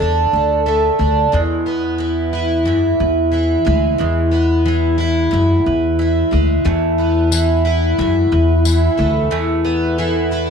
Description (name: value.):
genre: acoustic pop.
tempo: 90 BPM.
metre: 4/4.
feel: straight.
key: unclear.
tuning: A4 = 440 Hz.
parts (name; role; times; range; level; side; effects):
picked plugged-in twelve-string acoustic guitar; accompaniment; 0.0-10.5 s; E2 to E4; -16 LUFS; left 1 dB; double-tracked left and right.
mandolin; arpeggios; 0.0-10.5 s; G#3 to E5; -22 LUFS; right 9 dB; none.
upright bass; bass; 0.0-9.3 s; D2 to F#2; -18 LUFS; left 1 dB; none.
tambourine; percussion; 7.3-8.8 s; none; -24 LUFS; left 13 dB; none.
room: moderate echo chamber reverb, RT60 1.4 s, studio reverb.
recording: 1960s-style stereo with parts hard left and right.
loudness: -14 LUFS.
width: side -6 dB against mid.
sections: 0.0-1.3 A section; 1.3-10.5 B section.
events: break 9.3-10.5.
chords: 0.0 Dsus2; 1.3 E; 6.7 Asus2.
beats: 0.00 0.67 | 1.33 2.00 2.67 3.33 | 4.00 4.66 5.33 5.99 | 6.66 7.32 7.99 8.65 | 9.32 9.98.